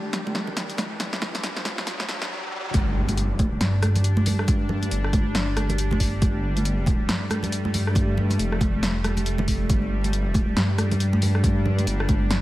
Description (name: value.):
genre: deep dubstep.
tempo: 138 BPM.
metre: 4/4.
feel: swing 60% on 16ths, half-time.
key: unclear.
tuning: A4 = 436 Hz.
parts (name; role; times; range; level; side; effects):
bowed-like drone; sustained chords; 0.0-12.4 s; G3 to D4; -31 LUFS; equal; built-in reverb.
riser and impact; sound effects; 0.0-4.5 s; none; -32 LUFS; equal; none.
flickering grainy texture; texture; 0.0-2.3 s; G3 to G4; -44 LUFS; equal; none.
deep house drum kit; drums; 0.1-12.4 s; hi-hat, rim click, snare drum; -28 LUFS; equal; overdrive.
congas; percussion; 0.3-12.2 s; none; -29 LUFS; right 1 dB; none.
dark detuned saw bass; bass; 2.7-12.4 s; F1 to G2; -24 LUFS; equal; none.
electronic kick drum; drums; 2.7-12.2 s; none; -23 LUFS; equal; overdrive.
room: light reverb.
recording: vinyl crackle, high-pass filter.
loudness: -21 LUFS.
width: side -16 dB against mid.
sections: 0.0-2.7 A section; 2.7-12.4 B section.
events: build-up 0.0-2.7; drum fill 0.0-2.3; riser 0.0-2.7; filter sweep 0.0-2.7; stop 2.3-2.7; drop 2.7-12.4; impact 2.7-4.5.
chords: 0.0 G5; 2.7 Gsus2.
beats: 0.13 0.57 | 1.00 1.44 1.87 2.31 | 2.74 3.18 3.61 4.04 | 4.48 4.92 5.35 5.79 | 6.22 6.65 7.09 7.52 | 7.96 8.39 8.83 9.26 | 9.70 10.13 10.57 11.00 | 11.44 11.87 12.31.